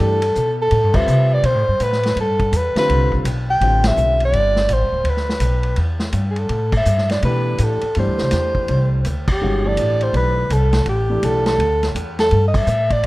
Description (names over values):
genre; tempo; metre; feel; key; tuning
modal jazz; 166 BPM; 4/4; swing 64% on 8ths; D dorian; A4 = 440 Hz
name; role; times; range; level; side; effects
mellow soprano saxophone; melody; 0.0-13.1 s; G4 to G5; -19 LUFS; equal; none
warm concert grand piano; accompaniment; 0.0-4.6, 7.2-13.1 s; D3 to B4; -26 LUFS; equal; none
upright bass; bass; 0.0-13.1 s; D1 to C3; -18 LUFS; equal; none
vintage drum kit; drums; 0.2-13.1 s; crash cymbal, hi-hat, kick drum, ride cymbal, snare drum; -25 LUFS; equal; none
room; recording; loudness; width
light reverb, small room reverb; rough home demo mix; -15 LUFS; side -19 dB against mid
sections
0.0-13.1 A section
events
band accent 0.9, 3.8, 6.7, 9.2, 12.5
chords
0.0 D13sus4